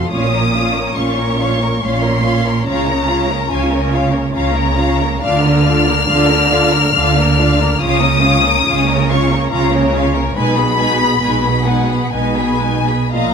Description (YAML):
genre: classical, slow romantic movement for string orchestra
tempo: 70 BPM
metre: 3/4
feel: rubato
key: Bb minor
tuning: A4 = 437 Hz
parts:
  - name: warm studio violin section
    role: melody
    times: 0.0-13.3 s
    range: Gb5 to F6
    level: -18 LUFS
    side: left 4 dB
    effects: none
  - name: warm symphonic violin section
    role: second line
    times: 0.0-13.3 s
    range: Ab4 to Cb6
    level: -20 LUFS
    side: left 4 dB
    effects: none
  - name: warm studio viola section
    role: accompaniment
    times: 0.0-13.3 s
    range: Ab3 to Gb4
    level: -20 LUFS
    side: right 1 dB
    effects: none
  - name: dark studio double bass section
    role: bass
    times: 0.1-13.3 s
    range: Bb1 to D2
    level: -18 LUFS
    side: right 2 dB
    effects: none
  - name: warm studio cello section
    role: bass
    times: 0.1-13.3 s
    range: Bb2 to D3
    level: -19 LUFS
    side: right 3 dB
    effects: none
room: light reverb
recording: close, detailed microphones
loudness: -12 LUFS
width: side -6 dB against mid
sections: 0.0-13.3 A section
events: none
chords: 0.1 Bbm; 2.7 Bbm/Db; 5.2 Bb/D; 7.8 Bbm/Db; 10.4 Abm/Cb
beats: | 0.11 0.96 1.83 | 2.67 3.51 4.34 | 5.24 6.09 6.96 | 7.81 8.67 9.53 | 10.37 11.23 12.13 | 13.12